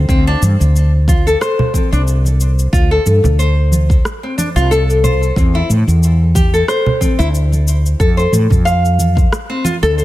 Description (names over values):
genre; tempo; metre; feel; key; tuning
organic downtempo; 91 BPM; 4/4; swing 55% on 16ths; D minor; A4 = 440 Hz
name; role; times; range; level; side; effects
woody fretless electric bass; bass; 0.0-10.0 s; C2 to A2; -12 LUFS; equal; sidechain pumping
bronze singing bowl; texture; 0.0-10.0 s; C5; -37 LUFS; equal; none
nylon-string guitar; arpeggios; 0.1-10.0 s; C4 to F5; -17 LUFS; left 1 dB; ping-pong delay
electronic kick drum; drums; 0.1-9.3 s; none; -14 LUFS; equal; none
electronic shaker and rim click; drums; 0.1-10.0 s; none; -25 LUFS; left 1 dB; none
congas; percussion; 0.4-10.0 s; none; -20 LUFS; right 2 dB; none
room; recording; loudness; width
small room ambience; none; -11 LUFS; side -15 dB against mid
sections
0.0-10.0 A section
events
none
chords
0.1 D7(no3); 5.4 C/E; 8.0 F